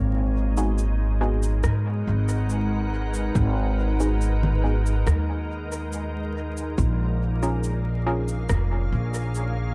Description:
ambient dub; 70 BPM; 4/4; straight; G# dorian; A4 = 440 Hz
soft additive organ-like pad; sustained chords; 0.0-9.7 s; A#2 to F#5; -33 LUFS; equal; ensemble chorus, built-in reverb
upright bass; bass; 0.0-9.7 s; E#1 to G#2; -26 LUFS; equal
filtered dub chord stab; stabs; 0.6-9.7 s; B3 to A#4; -34 LUFS; equal; chorus, dub echo
electronic shaker, rim click and congas; drums; 0.6-9.5 s; -36 LUFS; equal; dub echo
electronic kick drum; drums; 1.6-8.7 s; -29 LUFS; equal
little or no reverb; echo-heavy mix, vinyl crackle; -24 LUFS; mono
0.0-9.7 A section
0.0 G#m7; 6.8 A#m7
0.78 1.64 2.50 | 3.35 4.21 5.07 5.92 | 6.78 7.64 8.49 9.35

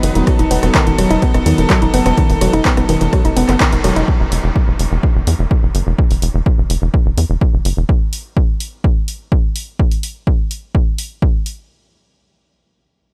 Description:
melodic techno; 126 BPM; 4/4; straight; A4 = 445 Hz
rich chamber string section; sustained chords; 0.0-4.0 s; F#3 to B4; -24 LUFS; equal; sidechain pumping
woody wave-folded pluck; arpeggios; 0.0-4.0 s; D#3 to D#5; -20 LUFS; equal; chorus, sidechain pumping, tape echo
tight sequencer bass; bass; 0.0-7.8 s; E1 to E2; -19 LUFS; equal; sidechain pumping
punchy analog drum machine; drums; 0.0-11.6 s; handclaps, hi-hat, ride cymbal, rim click; -25 LUFS; equal
electronic kick drum; drums; 0.3-11.3 s; -17 LUFS; equal
light reverb; -15 LUFS; mono
0.0-4.1 A section; 4.1-11.7 B section
drop 0.0-4.1; band accent 3.6
0.0 B/E; 4.1 N.C.
| 0.27 0.75 1.22 1.70 | 2.17 2.65 3.13 3.60 | 4.08 4.56 5.03 5.51 | 5.99 6.46 6.94 7.41 | 7.89 8.37 8.84 9.32 | 9.79 10.27 10.75 11.22

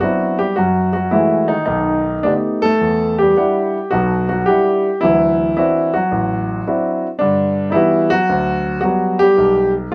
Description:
solo jazz; 109 BPM; 4/4; swing 69% on 8ths, rubato; G major; A4 = 440 Hz
warm grand piano; solo; 0.0-9.9 s; A1 to F#5; -16 LUFS; equal
moderate studio reverb, RT60 0.7 s; -16 LUFS; mono
0.0-9.9 A section
0.0 Cmaj9; 0.6 F#m9; 1.7 B7alt; 2.8 Em9; 5.0 D9; 7.2 Gmaj7; 9.4 N.C.
0.02 | 0.58 1.13 1.68 2.24 | 2.81 3.37 3.92 4.48 | 5.03 5.57 6.12 6.67 | 7.21 7.75 8.29 8.83 | 9.38 9.93

